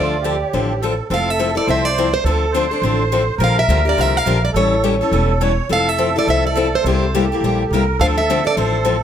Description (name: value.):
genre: acoustic string swing (jazz manouche).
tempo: 209 BPM.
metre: 4/4.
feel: swing 58% on 8ths.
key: D minor.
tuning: A4 = 440 Hz.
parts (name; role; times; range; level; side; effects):
picked plugged-in steel-string acoustic guitar; melody; 0.0-8.8 s; A4 to F5; -20 LUFS; right 2 dB; none.
musette accordion; second line; 0.0-9.0 s; F4 to C#5; -22 LUFS; right 6 dB; none.
picked steel-string acoustic guitar; accompaniment; 0.0-9.0 s; C3 to A4; -20 LUFS; left 5 dB; none.
upright bass; bass; 0.0-9.0 s; E1 to D2; -20 LUFS; equal; none.
room: moderate studio reverb, RT60 0.8 s.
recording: none.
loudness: -14 LUFS.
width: side -9 dB against mid.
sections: 0.0-1.1 A section; 1.1-9.0 B section.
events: none.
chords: 0.0 Dm7; 1.1 Fmaj7; 2.2 Dm7; 3.4 Bb6; 4.5 A7; 5.7 Fmaj7; 6.8 C7; 8.0 Dm7.